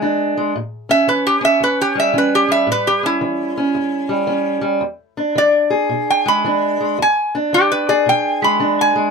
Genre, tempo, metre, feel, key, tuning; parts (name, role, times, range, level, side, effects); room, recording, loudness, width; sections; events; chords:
acoustic country blues, solo or duo; 112 BPM; 4/4; swing 65% on 8ths; E mixolydian; A4 = 444 Hz
fingerpicked steel-string acoustic guitar; accompaniment; 0.0-9.1 s; E2 to G#4; -18 LUFS; right 1 dB
lap resonator guitar; melody; 0.9-9.1 s; E4 to B5; -16 LUFS; equal
moderate booth ambience, RT60 0.3 s; -14 LUFS; side -5 dB against mid
0.0-9.1 A section
0.0 E7; 0.5 A7; 4.8 E7